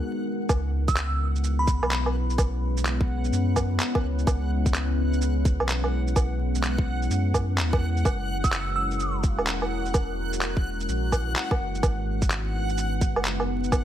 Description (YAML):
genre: future garage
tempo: 127 BPM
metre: 4/4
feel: swing 64% on 16ths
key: C# dorian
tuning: A4 = 440 Hz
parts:
  - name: deep dark ambient pad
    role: sustained chords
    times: 0.0-13.8 s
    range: G#3 to B4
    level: -31 LUFS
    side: left 2 dB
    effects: chorus, built-in reverb, sidechain pumping
  - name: warm sub bass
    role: bass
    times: 0.5-13.8 s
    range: E1 to F#2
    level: -27 LUFS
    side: equal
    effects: sidechain pumping
  - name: electronic kick drum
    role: drums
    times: 0.5-13.8 s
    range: none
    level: -24 LUFS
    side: equal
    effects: none
  - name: electronic shaker, woodblock and handclaps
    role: drums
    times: 0.5-13.8 s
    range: none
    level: -29 LUFS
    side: right 2 dB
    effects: none
  - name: backwards swelling texture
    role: texture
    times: 0.5-13.8 s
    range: F#5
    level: -37 LUFS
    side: right 1 dB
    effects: built-in reverb
  - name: glassy synth bell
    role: melody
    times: 0.9-1.9, 8.4-9.1 s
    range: B5 to E6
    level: -30 LUFS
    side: right 2 dB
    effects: chorus, tremolo, digital delay
room: light reverb, digital ambience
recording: vinyl crackle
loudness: -23 LUFS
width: side -11 dB against mid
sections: 0.5-13.8 A section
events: break 0.0-0.5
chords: 0.5 C#m7; 8.1 F#9; 11.8 G#m7